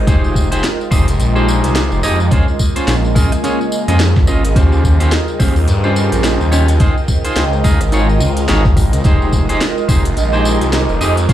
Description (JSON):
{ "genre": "glitch hop", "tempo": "107 BPM", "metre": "4/4", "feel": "swing 59% on 16ths", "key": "F minor", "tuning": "A4 = 442 Hz", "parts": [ { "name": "warbly tape-like pad", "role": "sustained chords", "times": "0.0-11.3 s", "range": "Db3 to C5", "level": "-23 LUFS", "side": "left 2 dB", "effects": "chorus, built-in reverb, phaser, vintage 12-bit sampler grit, sidechain pumping" }, { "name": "phased detuned saw bass", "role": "bass", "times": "0.0-11.3 s", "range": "F1 to G2", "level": "-15 LUFS", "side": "equal", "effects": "phaser, tube saturation" }, { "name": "airy breathy pad", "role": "texture", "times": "0.0-11.3 s", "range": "F4 to Ab5", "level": "-23 LUFS", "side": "right 5 dB", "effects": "chorus, phaser, sidechain pumping" }, { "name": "clean electric guitar", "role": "stabs", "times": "0.1-11.3 s", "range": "Db4 to Eb5", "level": "-20 LUFS", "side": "right 1 dB", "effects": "sidechain pumping, dub echo" }, { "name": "drum and bass drum kit", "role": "drums", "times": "0.1-11.3 s", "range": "hi-hat, rim click, snare drum", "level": "-21 LUFS", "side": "equal", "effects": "small room ambience" }, { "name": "electronic kick drum", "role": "drums", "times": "0.1-11.3 s", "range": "none", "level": "-13 LUFS", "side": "equal", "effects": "overdrive, small room ambience" }, { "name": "tambourine", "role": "percussion", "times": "0.1-11.3 s", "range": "none", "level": "-29 LUFS", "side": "left 1 dB", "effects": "none" } ], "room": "light reverb", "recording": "played on a big sound system in a bare room, large studio reverb", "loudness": "-11 LUFS", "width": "side -12 dB against mid", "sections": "0.0-11.3 A section", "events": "none", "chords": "0.1 Fm9; 2.3 Bbm7; 4.6 Eb13; 6.8 Dbmaj7; 9.0 Fm9", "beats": "| 0.07 0.64 1.20 1.76 | 2.32 2.88 3.44 4.00 | 4.56 5.12 5.68 6.24 | 6.80 7.36 7.92 8.49 | 9.05 9.61 10.17 10.73 | 11.29" }